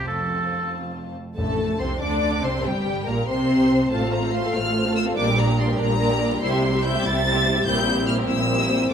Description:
classical, dramatic, fast romantic movement for symphony orchestra; 95 BPM (dotted quarters); 6/8; straight; A4 = 441 Hz
rich symphonic violin section; melody; 0.0-8.9 s; G5 to A6; -27 LUFS; left 2 dB
bright oboe; second line; 0.0-0.7 s; A4; -26 LUFS; right 2 dB
dark symphonic violin section; second line; 0.0-8.9 s; E4 to F5; -28 LUFS; left 2 dB
warm symphonic viola section; accompaniment; 0.0-8.9 s; G3 to A4; -28 LUFS; right 1 dB
rich symphonic cello section; bass; 0.0-8.9 s; F2 to D3; -28 LUFS; right 3 dB
rich symphonic double bass section; bass; 0.0-8.9 s; F1 to D2; -28 LUFS; right 2 dB
mellow French horn section; sustained chords; 1.4-8.9 s; G3 to F4; -25 LUFS; left 2 dB
timpani; percussion; 1.4-2.0 s; F2; -33 LUFS; left 1 dB
wet recital hall reverb, RT60 1.6 s; -19 LUFS; side -8 dB against mid
0.0-1.4 A section; 1.4-8.9 A section
0.1 F; 1.4 Amadd11; 2.6 C5/G; 3.9 F/A; 5.2 Gm/Bb; 6.4 C; 7.7 C7/Bb
| 0.07 0.73 | 1.38 2.01 | 2.65 3.28 | 3.91 4.54 | 5.17 5.79 | 6.41 7.03 | 7.66 8.28 | 8.91

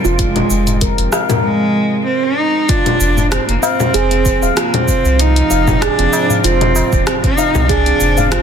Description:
organic downtempo; 96 BPM; 4/4; swing 54% on 16ths; F dorian; A4 = 440 Hz
bowed-like drone; sustained chords; 0.0-8.4 s; Ab2 to Bb4; -24 LUFS; equal; built-in reverb, sidechain pumping
handpan; arpeggios; 0.0-8.4 s; C4 to F5; -19 LUFS; right 2 dB; ping-pong delay
warm sub bass; bass; 0.0-8.4 s; Eb1 to C2; -16 LUFS; equal; sidechain pumping
deep house drum kit; drums; 0.0-8.4 s; cabasa, congas, hi-hat, rim click; -19 LUFS; left 1 dB; soft clipping on snare
rich cello; melody; 0.2-8.4 s; Ab3 to Eb4; -16 LUFS; right 1 dB; ping-pong delay
electronic kick drum; drums; 0.2-7.8 s; -18 LUFS; equal
tabla; percussion; 0.7-8.3 s; -23 LUFS; left 2 dB
light reverb, digital ambience; dense, heavily limited modern master; -11 LUFS; side -8 dB against mid
0.0-2.7 A section; 2.7-8.4 B section
0.0 Fm
| 0.19 0.82 1.44 2.07 | 2.69 3.32 3.94 4.57 | 5.19 5.82 6.44 7.07 | 7.69 8.32

